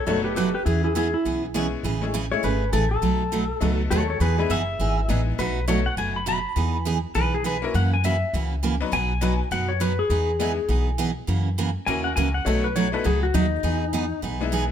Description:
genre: country.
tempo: 203 BPM.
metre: 4/4.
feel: swing 61% on 8ths.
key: E major.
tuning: A4 = 440 Hz.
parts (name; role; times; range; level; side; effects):
clean lap steel guitar; second line; 0.0-14.2 s; D#4 to B5; -26 LUFS; left 3 dB; none.
picked steel-string acoustic guitar; accompaniment; 0.1-14.6 s; B2 to G#4; -26 LUFS; right 5 dB; none.
tack piano; accompaniment; 0.1-14.7 s; F#3 to B4; -30 LUFS; left 7 dB; none.
upright bass; bass; 0.1-14.7 s; F#1 to F#2; -25 LUFS; equal; none.
room: light reverb.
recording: none.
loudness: -21 LUFS.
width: side -9 dB against mid.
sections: 0.0-14.7 A section.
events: electric slide guitar solo 0.0-14.7.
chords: 0.0 B7; 0.7 E6; 1.8 Amaj7; 3.0 B7; 4.2 Emaj7; 5.4 B7; 6.6 Emaj7; 7.7 F#7; 8.9 B; 10.1 Emaj7; 11.3 F#7; 12.5 B7; 13.6 Emaj7.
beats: 0.07 0.37 | 0.66 0.96 1.25 1.55 | 1.84 2.14 2.43 2.73 | 3.02 3.32 3.61 3.91 | 4.20 4.50 4.79 5.09 | 5.38 5.68 5.98 6.27 | 6.57 6.86 7.16 7.45 | 7.75 8.04 8.34 8.63 | 8.93 9.22 9.52 9.81 | 10.11 10.40 10.69 10.99 | 11.28 11.58 11.87 12.17 | 12.46 12.76 13.05 13.35 | 13.64 13.93 14.23 14.52.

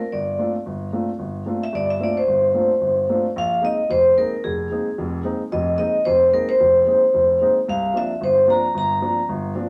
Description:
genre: jazz.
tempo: 222 BPM.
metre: 4/4.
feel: swing 58% on 8ths.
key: unclear.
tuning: A4 = 440 Hz.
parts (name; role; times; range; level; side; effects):
vibraphone with medium hard mallets; melody; 0.0-9.3 s; Ab4 to Bb5; -20 LUFS; equal; none.
warm grand piano; accompaniment; 0.1-9.7 s; F1 to F4; -28 LUFS; equal; none.
room: wet studio reverb, RT60 0.8 s.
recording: none.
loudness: -20 LUFS.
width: mono.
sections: 0.0-3.3 A section; 3.3-9.7 B section.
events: none.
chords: 0.0 C13sus4; 3.3 Bb9sus4; 7.7 C9sus4.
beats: | 0.10 0.36 0.64 0.91 | 1.18 1.45 1.72 1.99 | 2.26 2.53 2.80 3.07 | 3.34 3.61 3.88 4.15 | 4.42 4.69 4.96 5.24 | 5.50 5.78 6.05 6.32 | 6.59 6.86 7.13 7.40 | 7.67 7.94 8.21 8.47 | 8.74 9.01 9.28 9.55.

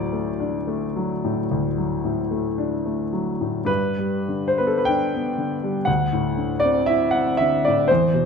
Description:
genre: classical, romantic nocturne for solo piano.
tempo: 47-64 BPM.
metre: 4/4.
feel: rubato.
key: unclear.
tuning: A4 = 440 Hz.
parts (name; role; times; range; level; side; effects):
warm grand piano; solo; 0.0-8.3 s; D2 to G5; -20 LUFS; left 1 dB; none.
room: wet large studio reverb, RT60 1.5 s.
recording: none.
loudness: -20 LUFS.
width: side -6 dB against mid.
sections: 0.0-8.3 A section.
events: none.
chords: 0.0 D; 3.7 G; 5.9 Dsus2.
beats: 0.40 1.50 2.57 | 3.68 4.87 5.88 6.88 | 7.89.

